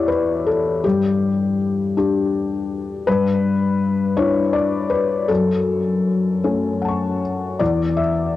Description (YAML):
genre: neoclassical minimalist piano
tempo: 53 BPM (dotted quarters)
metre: 6/8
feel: rubato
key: E dorian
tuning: A4 = 440 Hz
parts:
  - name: felt-muted upright piano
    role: solo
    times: 0.0-8.4 s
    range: E2 to C#6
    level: -17 LUFS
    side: left 3 dB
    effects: cassette tape, tape echo
room: light reverb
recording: home recording on cassette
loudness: -17 LUFS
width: side -14 dB against mid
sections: 0.0-8.4 A section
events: none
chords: 0.0 Em; 0.8 G5; 3.1 Em7/G; 5.3 F#m; 7.6 E5